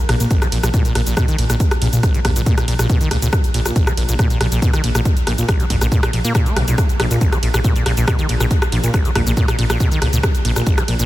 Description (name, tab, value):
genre	driving peak-time techno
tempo	139 BPM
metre	4/4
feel	straight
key	Bb phrygian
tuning	A4 = 440 Hz
part	acid bass, saw	riff	0.1-11.1 s	Bb1 to Bb3	-21 LUFS	equal	sidechain pumping, ping-pong delay
part	dark detuned saw bass	bass	0.1-11.1 s	Bb1 to Bb2	-19 LUFS	equal	sidechain pumping
part	techno drum kit	drums	0.1-11.1 s	hi-hat, ride cymbal, rim click, shaker	-22 LUFS	equal	sidechain pumping on hats, sidechain pumping on perc, sidechain pumping on cymbals
part	electronic kick drum	drums	0.3-10.8 s	none	-17 LUFS	equal	none
room	light reverb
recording	none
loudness	-14 LUFS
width	side -15 dB against mid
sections	0.0-11.1 A section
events	none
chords	0.0 Bb5